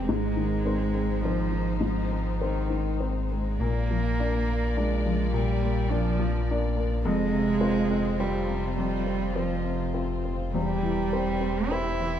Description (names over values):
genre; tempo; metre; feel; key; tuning
neoclassical piano and strings; 104 BPM; 3/4; rubato; unclear; A4 = 438 Hz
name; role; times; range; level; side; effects
warm cello; second line; 0.0-12.2 s; Eb3 to E4; -29 LUFS; right 5 dB; none
warm upright piano; accompaniment; 0.0-12.2 s; E2 to D5; -29 LUFS; left 3 dB; none
warm chamber string section; sustained chords; 0.0-12.2 s; Bb3 to D5; -38 LUFS; left 4 dB; none
sub bass with octave; bass; 0.0-12.2 s; E1 to Bb1; -30 LUFS; left 1 dB; none
room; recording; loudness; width
light reverb; dark, warm production; -24 LUFS; side -10 dB against mid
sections
0.0-3.6 A section; 3.6-12.2 A section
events
none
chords
0.1 Ab; 3.6 Bb; 7.1 Fm; 10.5 C/E